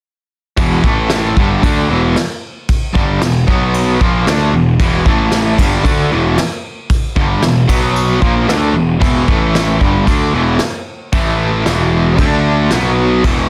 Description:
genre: hard rock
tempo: 114 BPM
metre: 4/4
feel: straight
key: E minor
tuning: A4 = 440 Hz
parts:
  - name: distorted electric guitar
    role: riff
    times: 0.6-13.5 s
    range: E2 to D4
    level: -18 LUFS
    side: equal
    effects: overdrive
  - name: overdriven semi-hollow guitar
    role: riff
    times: 0.6-13.5 s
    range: E2 to D4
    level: -21 LUFS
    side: equal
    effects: tremolo
  - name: fuzz picked electric bass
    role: bass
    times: 0.6-13.5 s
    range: E1 to D2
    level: -19 LUFS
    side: equal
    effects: overdrive
  - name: soft brush drum kit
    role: drums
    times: 0.6-13.4 s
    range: crash cymbal, kick drum, snare drum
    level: -19 LUFS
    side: equal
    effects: none
room: light reverb, small room ambience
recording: dense, heavily limited modern master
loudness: -14 LUFS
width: mono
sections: 0.6-13.5 A section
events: none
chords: 0.6 E5; 0.9 A5; 1.4 Em; 3.5 B5; 4.0 E5; 5.1 A5; 5.6 Em; 7.7 B5; 8.2 E5; 9.3 A5; 9.8 Em; 11.1 A5; 11.7 E5; 12.2 D5; 12.7 B5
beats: | 0.59 1.12 1.64 2.17 | 2.70 3.22 3.75 4.28 | 4.80 5.33 5.86 6.38 | 6.91 7.44 7.97 8.49 | 9.02 9.55 10.08 10.61 | 11.14 11.66 12.19 12.72 | 13.25

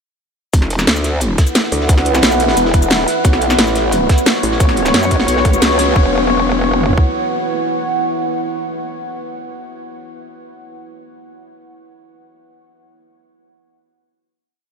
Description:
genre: dark technical drum and bass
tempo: 177 BPM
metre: 4/4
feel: straight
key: unclear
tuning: A4 = 440 Hz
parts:
  - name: deep dark ambient pad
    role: sustained chords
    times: 1.3-9.4 s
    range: B3 to F#5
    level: -18 LUFS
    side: equal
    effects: chorus, built-in reverb, sidechain pumping
  - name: growl bass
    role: bass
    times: 0.5-6.9 s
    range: E1 to F#2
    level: -17 LUFS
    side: equal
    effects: chorus, tube saturation, sidechain pumping
  - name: crunchy breakbeat drum kit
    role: drums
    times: 0.5-5.9 s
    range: hi-hat, snare drum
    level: -27 LUFS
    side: equal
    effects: none
  - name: drum and bass drum kit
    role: drums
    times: 0.5-7.1 s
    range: kick drum, toms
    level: -13 LUFS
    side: equal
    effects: none
  - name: drum and bass drum kit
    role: drums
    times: 0.5-5.9 s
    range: hi-hat, shaker, snare drum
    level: -18 LUFS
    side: equal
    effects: none
room: moderate huge ambient reverb, RT60 7.7 s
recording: dreamy mix soaked in reverb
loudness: -12 LUFS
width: side -6 dB against mid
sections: 0.5-6.0 drop; 6.0-8.7 final chord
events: drop 0.5-6.0; band accent 5.6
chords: 0.5 E5; 3.2 Bsus2; 6.0 E5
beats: | 0.54 0.87 1.21 1.55 | 1.89 2.23 2.57 2.91 | 3.25 3.58 3.92 4.26 | 4.60 4.94 5.28 5.62 | 5.96 6.30 6.64 6.97 | 7.31 7.65 7.99 8.33

